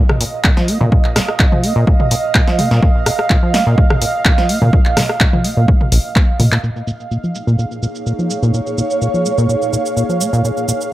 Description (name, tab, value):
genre	acid house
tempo	126 BPM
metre	4/4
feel	straight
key	Bb minor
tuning	A4 = 442 Hz
part	warm analog pad	sustained chords	0.0-10.9 s	F5	-24 LUFS	right 5 dB	chorus, vintage 12-bit sampler grit, sidechain pumping
part	acid bass, saw	riff	0.0-10.7 s	Bb1 to Bb3	-17 LUFS	equal	sidechain pumping, tape echo
part	ethereal airy pad	texture	0.1-10.9 s	Bb3 to F5	-22 LUFS	right 2 dB	ensemble chorus, built-in reverb, sidechain pumping
part	punchy analog drum machine	drums	0.1-10.9 s	handclaps, hi-hat, rim click, shaker, snare drum, toms	-18 LUFS	equal	overdrive, low-pass filter on snare, low-pass filter on hats, low-pass filter on toms, low-pass filter on perc
part	electronic kick drum	drums	0.4-6.3 s	none	-13 LUFS	equal	overdrive
room	light reverb, digital ambience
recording	none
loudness	-12 LUFS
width	side -15 dB against mid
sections	0.0-6.6 A section; 6.6-10.9 B section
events	filter sweep on acid bass 0.0-6.6, 6.6-10.9; drum fill 6.2-6.6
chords	0.0 Bb5